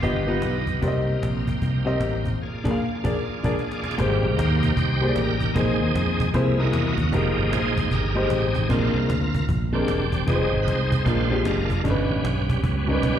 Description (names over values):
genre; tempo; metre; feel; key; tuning
uptempo gospel; 152 BPM; 4/4; swing 62% on 8ths; unclear; A4 = 439 Hz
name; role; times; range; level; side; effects
clean electric guitar; second line; 0.0-0.8 s; D#4 to G4; -32 LUFS; right 4 dB; spring reverb, slapback echo
warm upright piano; accompaniment; 0.0-13.2 s; G2 to F5; -25 LUFS; left 3 dB; slapback echo
bright tonewheel organ; sustained chords; 0.0-13.2 s; F3 to G5; -27 LUFS; right 3 dB; slow rotary speaker, chorus vibrato
fingered electric bass; bass; 0.0-13.2 s; Fb1 to F2; -24 LUFS; equal; none
cajon; drums; 0.0-13.1 s; none; -28 LUFS; equal; slapback echo
room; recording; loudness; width
light reverb, small room ambience; live gig heard through the venue's PA, recital hall reverb; -20 LUFS; side -10 dB against mid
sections
0.0-4.0 A section; 4.0-13.2 B section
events
band accent 2.4-4.0; drum fill 3.2-4.0; tonewheel organ solo 4.0-13.2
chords
0.0 Gaug7; 0.8 Cm7; 2.4 Bb7; 4.0 Abmaj9; 5.6 Bb9sus4; 6.3 C7alt; 7.1 Fm11; 8.7 Bb9; 10.3 Fm7; 11.1 Bb7; 11.8 Eb7b13/G